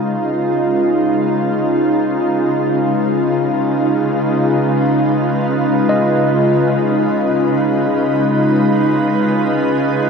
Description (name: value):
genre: ambient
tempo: free time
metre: none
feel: none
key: Db mixolydian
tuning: A4 = 439 Hz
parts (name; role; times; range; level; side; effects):
- soft additive organ-like pad; sustained chords; 0.0-10.1 s; Db3 to Cb5; -14 LUFS; equal; ensemble chorus, built-in reverb
- warm symphonic cello section; bass; 0.0-10.1 s; Db3; -25 LUFS; left 1 dB; none
- overdriven tine electric piano; arpeggios; 5.9-10.1 s; Eb5; -22 LUFS; left 2 dB; diffuse ambient delay
room: wet huge ambient reverb, RT60 7.1 s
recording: none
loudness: -13 LUFS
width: side -5 dB against mid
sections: 0.0-10.1 A section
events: fade-in on cello section 0.0-10.1; filter sweep on ambient pad 0.0-10.1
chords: 0.0 Db7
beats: free time